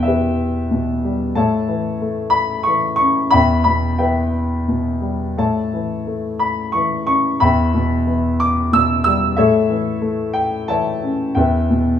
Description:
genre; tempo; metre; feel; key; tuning
classical, lyrical solo piano; 91 BPM; 3/4; rubato; A mixolydian; A4 = 438 Hz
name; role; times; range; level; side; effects
dark grand piano; solo; 0.0-12.0 s; E2 to E6; -15 LUFS; left 1 dB; none
room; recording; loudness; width
light reverb; small room ambience; -15 LUFS; side -9 dB against mid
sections
0.0-12.0 A section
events
none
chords
0.0 Em; 1.4 A; 3.3 Em; 5.4 A; 7.4 Em; 9.4 A; 11.4 Em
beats
0.05 0.71 | 1.36 2.01 2.67 | 3.33 3.99 4.68 | 5.38 6.06 6.73 | 7.41 8.07 8.72 | 9.37 10.02 10.69 | 11.37

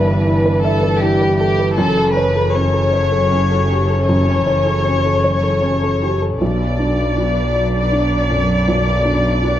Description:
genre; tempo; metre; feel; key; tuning
neoclassical piano and strings; 52 BPM (dotted quarters); 6/8; rubato; B minor; A4 = 436 Hz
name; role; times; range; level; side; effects
muted chamber violin section; melody; 0.0-9.6 s; G4 to D5; -18 LUFS; left 2 dB; none
muted cello; second line; 0.0-9.6 s; E3 to F#3; -25 LUFS; right 5 dB; none
felt-muted upright piano; accompaniment; 0.0-9.6 s; B1 to E5; -19 LUFS; right 1 dB; none
muted chamber string section; sustained chords; 0.0-9.6 s; E3 to B4; -29 LUFS; equal; none
muted double bass; bass; 0.0-9.6 s; F#1 to B1; -19 LUFS; equal; none
room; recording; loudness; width
moderate recital hall reverb, RT60 1.6 s; worn, warbling old tape, cassette tape, warbly pitch drift; -14 LUFS; side -11 dB against mid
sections
0.0-6.4 A section; 6.4-9.6 B section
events
none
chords
0.0 Em7/G; 1.8 F#m7; 6.4 Bm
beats
0.65 | 1.78 2.93 | 4.08 5.25 | 6.41 7.55 | 8.68

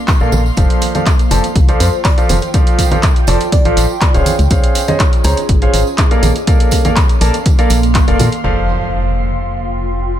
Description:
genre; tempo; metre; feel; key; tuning
piano house; 122 BPM; 4/4; straight; F major; A4 = 440 Hz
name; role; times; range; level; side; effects
ethereal airy pad; texture; 0.0-10.2 s; Bb3 to C6; -22 LUFS; right 2 dB; ensemble chorus, built-in reverb, phaser, sidechain pumping
electronic kick drum; drums; 0.1-8.1 s; none; -13 LUFS; equal; none
punchy analog drum machine; drums; 0.1-8.4 s; handclaps, hi-hat; -20 LUFS; equal; none
tambourine and congas; percussion; 0.1-8.4 s; none; -23 LUFS; right 3 dB; analog delay
clear grand piano; riff; 0.2-10.2 s; F3 to Bb5; -18 LUFS; right 1 dB; sidechain pumping, low-pass filter, analog delay
organ-like FM bass; bass; 0.2-10.2 s; D1 to Bb2; -15 LUFS; equal; sidechain pumping
bell-like FM electric piano; melody; 1.8-4.2 s; C5 to D5; -23 LUFS; left 2 dB; chorus, tremolo, analog delay
impact; sound effects; 8.4-10.2 s; none; -22 LUFS; left 1 dB; none
room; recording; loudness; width
little or no reverb; echo-heavy mix; -10 LUFS; side -11 dB against mid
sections
0.0-8.4 A section; 8.4-10.2 B section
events
impact 8.4-10.2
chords
0.0 Bbmaj7; 0.6 F6; 4.3 Dbmaj7; 6.2 Bbmaj7; 8.4 F6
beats
0.08 | 0.57 1.06 1.56 2.05 | 2.54 3.03 3.52 4.01 | 4.51 5.00 5.49 5.98 | 6.47 6.97 7.46 7.95 | 8.44 8.93 9.43 9.92

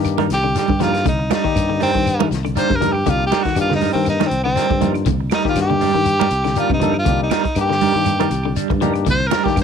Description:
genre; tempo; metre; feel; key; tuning
afrobeat; 120 BPM; 4/4; swing 56% on 16ths; C minor; A4 = 441 Hz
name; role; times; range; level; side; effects
barky tine electric piano; accompaniment; 0.0-9.6 s; Bb3 to D5; -26 LUFS; left 14 dB; auto-pan
electric guitar at the edge of break-up; arpeggios; 0.0-9.6 s; C3 to F3; -24 LUFS; left 12 dB; none
semi-hollow electric guitar; stabs; 0.0-9.5 s; G3 to Bb4; -25 LUFS; right 14 dB; tremolo
fingered electric bass; bass; 0.0-9.6 s; C2 to G2; -22 LUFS; equal; transformer saturation
claves; percussion; 0.0-9.6 s; none; -35 LUFS; right 13 dB; none
shekere; percussion; 0.0-9.6 s; none; -27 LUFS; left 4 dB; none
vintage drum kit; drums; 0.1-9.6 s; hi-hat, kick drum, snare drum; -25 LUFS; left 2 dB; none
congas; percussion; 0.2-9.6 s; none; -24 LUFS; right 13 dB; none
edgy tenor saxophone; melody; 0.3-9.6 s; C4 to C5; -20 LUFS; equal; none
room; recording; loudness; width
light reverb, small room ambience; 1960s-style stereo with parts hard left and right; -15 LUFS; side -7 dB against mid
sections
0.0-9.6 A section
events
tenor saxophone solo 0.0-9.6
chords
0.0 Cm9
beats
0.05 0.55 | 1.05 1.55 2.05 2.56 | 3.06 3.56 4.06 4.56 | 5.06 5.56 6.06 6.57 | 7.07 7.57 8.07 8.57 | 9.07 9.57

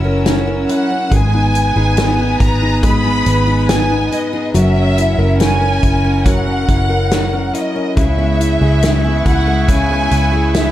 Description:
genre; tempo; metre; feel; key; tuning
pop ballad; 70 BPM; 4/4; straight; unclear; A4 = 440 Hz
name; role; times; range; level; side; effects
warm studio cello section; second line; 0.0-10.7 s; B3 to E4; -22 LUFS; right 2 dB; none
warm concert grand piano; accompaniment; 0.0-10.7 s; C#3 to B4; -20 LUFS; left 3 dB; none
clear studio string section; sustained chords; 0.0-10.7 s; A#4 to E6; -29 LUFS; left 2 dB; none
picked steel-string acoustic guitar; arpeggios; 0.0-10.7 s; G#2 to A#4; -25 LUFS; right 1 dB; tape echo
vintage muted fingered electric bass; bass; 0.0-10.7 s; F#1 to C#2; -16 LUFS; equal; none
natural country drum kit; drums; 0.3-10.7 s; hi-hat, kick drum, snare drum; -17 LUFS; equal; none
rich studio violin section; melody; 0.7-10.7 s; D#5 to B5; -19 LUFS; equal; none
room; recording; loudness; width
light reverb; dark, warm production; -12 LUFS; side -13 dB against mid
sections
0.0-10.7 A section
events
none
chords
0.0 F#7; 1.1 G#m; 4.5 F#7; 8.0 C#m7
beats
0.26 | 1.12 1.97 2.83 3.69 | 4.54 5.40 6.26 7.12 | 7.97 8.83 9.69 10.54

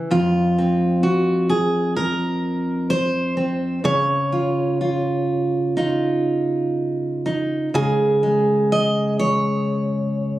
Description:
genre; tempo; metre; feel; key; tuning
folk, solo fingerstyle acoustic guitar; 63 BPM; 4/4; rubato; Db major; A4 = 441 Hz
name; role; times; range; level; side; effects
fingerpicked steel-string acoustic guitar; solo; 0.0-10.4 s; F2 to Eb5; -18 LUFS; right 1 dB; slapback echo
room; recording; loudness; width
light reverb; recorded on a phone in the room, club reverb, compression; -18 LUFS; side -15 dB against mid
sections
0.0-7.7 A section; 7.7-10.4 B section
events
none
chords
0.1 F5; 3.8 Dbadd9; 7.7 Db5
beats
| 0.11 1.03 1.96 2.89 | 3.84 4.79 5.75 6.75 | 7.74 8.71 9.66

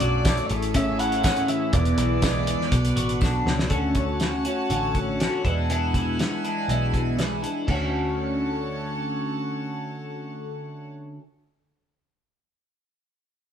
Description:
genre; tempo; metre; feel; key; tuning
psychedelic rock; 121 BPM; 4/4; straight; D lydian; A4 = 439 Hz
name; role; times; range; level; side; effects
combo organ; melody; 0.0-2.7 s; D5 to F#5; -28 LUFS; right 1 dB; none
rich chamber string section; sustained chords; 0.0-10.9 s; A3 to A5; -32 LUFS; right 2 dB; none
twelve-string electric guitar; riff; 0.0-11.2 s; E2 to F#4; -26 LUFS; left 1 dB; phaser
vintage muted picked electric bass; bass; 0.0-10.9 s; E1 to E2; -27 LUFS; equal; none
cloth-damped thuddy drum kit; drums; 0.0-7.8 s; crash cymbal, hi-hat, kick drum, snare drum; -26 LUFS; equal; none
tambourine; percussion; 0.3-3.3 s; none; -42 LUFS; left 7 dB; none
room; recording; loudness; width
moderate stone room reverb, RT60 1.2 s; band playing live in one room; -22 LUFS; side -8 dB against mid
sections
0.0-3.7 A section; 3.7-7.7 B section; 7.7-11.7 C section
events
drum fill 3.2-3.7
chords
0.0 D; 0.5 Amaj7; 1.7 E7; 2.7 Bm7; 3.7 Dmaj7; 5.4 E7; 7.7 Dmaj7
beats
0.25 0.75 1.24 | 1.73 2.23 2.72 3.21 | 3.71 4.20 4.70 5.19 | 5.69 6.18 6.68 7.18 | 7.67 8.17 8.67 9.17 | 9.66 10.16 10.66 11.16

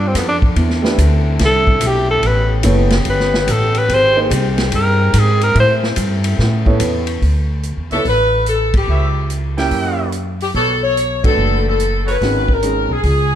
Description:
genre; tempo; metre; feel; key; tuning
jazz, big band swing; 144 BPM; 4/4; swing 66% on 8ths; D major from 7.2 s; A4 = 440 Hz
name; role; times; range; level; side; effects
clear tenor saxophone; melody; 0.0-5.8 s; B3 to C5; -16 LUFS; equal; none
dark saxophone section; sustained chords; 0.0-7.2 s; C#3 to Ab4; -24 LUFS; left 3 dB; none
upright bass; bass; 0.0-13.4 s; F#1 to A2; -16 LUFS; equal; none
vintage drum kit; drums; 0.1-13.2 s; hi-hat, kick drum, ride cymbal, snare drum; -21 LUFS; equal; none
clear upright piano; accompaniment; 0.8-12.9 s; D#3 to C#5; -22 LUFS; right 2 dB; none
clear saxophone section; melody; 7.9-13.4 s; G4 to C#5; -17 LUFS; left 2 dB; none
clear trumpet section; stabs; 7.9-12.2 s; D4 to G5; -25 LUFS; right 3 dB; none
room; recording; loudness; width
light reverb; dark, warm production; -13 LUFS; side -10 dB against mid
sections
0.0-7.2 A section; 7.2-13.4 B section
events
tenor saxophone solo 0.0-7.2; band accent 8.7, 11.2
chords
0.0 G7; 0.6 C69; 2.2 A9; 3.9 Abmaj7; 5.6 Am7; 6.4 A9; 7.2 Dmaj7sus2; 8.9 C#m7b5; 9.7 F#7b9; 10.5 Bm9; 12.2 G#m11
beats
0.15 | 0.56 0.98 1.40 1.81 | 2.23 2.65 3.06 3.48 | 3.89 4.31 4.72 5.14 | 5.56 5.97 6.39 6.80 | 7.22 7.64 8.05 8.47 | 8.88 9.30 9.72 10.13 | 10.55 10.96 11.38 11.80 | 12.21 12.63 13.04

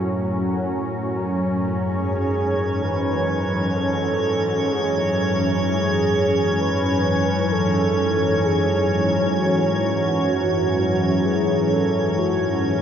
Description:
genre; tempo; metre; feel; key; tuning
dark ambient drone; 64 BPM; 4/4; straight; unclear; A4 = 440 Hz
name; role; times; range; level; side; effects
mellow horn-like synth lead; melody; 0.0-12.8 s; F#4 to B4; -24 LUFS; equal; wide subtle chorus, diffuse ambient delay
sweeping resonant pad; sustained chords; 0.0-12.8 s; G#2 to C#4; -22 LUFS; equal; chorus
organ-like drone; drone; 0.0-12.8 s; F#2 to F#3; -25 LUFS; left 1 dB; ensemble chorus, built-in reverb
icy glass pad; texture; 2.1-12.8 s; C#5; -26 LUFS; right 1 dB; chorus, built-in reverb
room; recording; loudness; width
wet huge ambient reverb, RT60 7.4 s; none; -18 LUFS; side -8 dB against mid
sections
0.0-12.8 A section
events
fade-in on soft synth lead 0.0-12.8; filter sweep on synth drone 0.0-12.8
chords
0.0 F#m; 1.8 C#m/F#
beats
0.86 | 1.82 2.78 3.73 4.68 | 5.63 6.57 7.50 8.44 | 9.37 10.31 11.25 12.19

